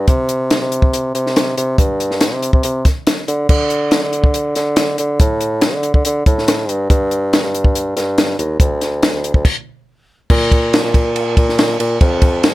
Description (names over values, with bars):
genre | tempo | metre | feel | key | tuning
math rock and midwest emo | 141 BPM | 4/4 | straight | unclear | A4 = 440 Hz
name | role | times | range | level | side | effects
warm bassoon | bass | 0.0-12.5 s | D2 to D3 | -17 LUFS | equal | none
compact cocktail drum kit | drums | 0.1-12.5 s | crash cymbal, hi-hat, kick drum, ride cymbal, snare drum | -14 LUFS | equal | none
room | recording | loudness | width
light reverb | none | -13 LUFS | side -17 dB against mid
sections
0.0-10.3 A section; 10.3-12.5 B section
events
stop 9.5-10.3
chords
none